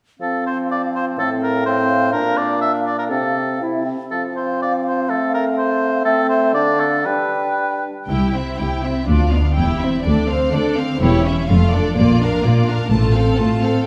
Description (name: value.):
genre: quick classical-period movement for symphony orchestra.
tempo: 114-128 BPM.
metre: 2/4.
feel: rubato.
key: F major, C major from 6.0 s.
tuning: A4 = 440 Hz.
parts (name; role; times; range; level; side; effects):
bright clarinet; second line; 0.2-7.8 s; C4 to E4; -26 LUFS; equal; none.
clear oboe; second line; 0.2-7.8 s; A4 to E5; -24 LUFS; equal; none.
mellow hollow large flute ensemble; second line; 0.2-7.8 s; E5 to G5; -27 LUFS; equal; none.
warm bassoon; accompaniment; 0.2-7.8 s; A2 to A3; -25 LUFS; equal; none.
rich chamber violin section; melody; 8.1-13.9 s; C#5 to A5; -30 LUFS; equal; none.
warm chamber violin section; second line; 8.1-13.9 s; D4 to C5; -26 LUFS; equal; none.
rich studio viola section; accompaniment; 8.1-13.9 s; A3 to E4; -24 LUFS; equal; none.
rich chamber double bass section; bass; 8.1-13.3 s; E1 to D2; -22 LUFS; equal; none.
rich symphonic cello section; bass; 8.1-13.8 s; C2 to Bb2; -22 LUFS; equal; none.
room: wet scoring stage reverb, RT60 1.8 s.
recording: heard from further back in the room.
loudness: -18 LUFS.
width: mono.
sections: 0.2-8.1 A section; 8.1-13.9 B section.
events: none.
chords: 0.2 F5; 1.2 F/A; 2.1 Bb; 3.1 F/C; 4.1 F5; 5.1 F/A; 6.5 Dm; 7.1 G; 8.1 C; 9.1 Bdim/D; 9.6 C/E; 10.1 Dm7; 11.0 C#dim/E; 11.5 Dm/F; 12.0 Bb; 12.9 F/A.